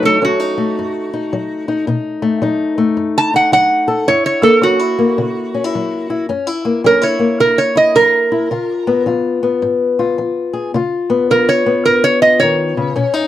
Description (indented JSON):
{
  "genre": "acoustic country blues, solo or duo",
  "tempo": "108 BPM",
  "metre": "4/4",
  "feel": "swing 64% on 8ths",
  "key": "unclear",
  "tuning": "A4 = 441 Hz",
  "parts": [
    { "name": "metal-body resonator slide guitar", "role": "melody", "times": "0.0-13.3 s", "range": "F#4 to A5", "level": "-13 LUFS", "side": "right 2 dB", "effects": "none" },
    { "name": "fingerpicked old ladder-braced acoustic guitar", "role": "accompaniment", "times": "0.0-13.3 s", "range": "F#2 to A4", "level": "-16 LUFS", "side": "left 4 dB", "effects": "none" }
  ],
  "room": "light reverb",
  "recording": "dry, close 1970s-style studio recording",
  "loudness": "-12 LUFS",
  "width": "side -12 dB against mid",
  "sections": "0.0-13.3 A section",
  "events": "resonator guitar played with a steel bar solo 0.0-13.3",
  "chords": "0.0 B7; 4.1 F#7; 8.5 C#7"
}